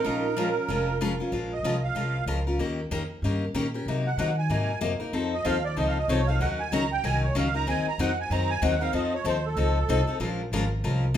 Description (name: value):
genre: acoustic string swing (jazz manouche)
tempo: 189 BPM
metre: 4/4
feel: swing 60% on 8ths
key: Bb minor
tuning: A4 = 441 Hz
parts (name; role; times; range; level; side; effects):
- musette accordion; melody; 0.0-10.2 s; A4 to Bb5; -29 LUFS; right 5 dB; none
- picked steel-string acoustic guitar; second line; 0.0-1.2 s; Db4 to F4; -35 LUFS; right 4 dB; none
- picked steel-string acoustic guitar; accompaniment; 0.0-11.2 s; C3 to Bb4; -28 LUFS; left 3 dB; none
- upright bass; bass; 0.1-11.2 s; F1 to Eb3; -28 LUFS; equal; none
room: moderate large studio reverb, RT60 0.9 s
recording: band playing live in one room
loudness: -24 LUFS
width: side -10 dB against mid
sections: 0.0-1.3 A section; 1.3-11.2 B section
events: accordion solo 1.3-11.2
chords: 0.1 Bbm7; 1.3 Bbm9; 2.6 Eb7; 3.9 Cm7b5; 5.1 F7b13; 6.4 Ebm7; 7.7 Cm7b5/Eb; 8.9 F7; 10.2 Bbm9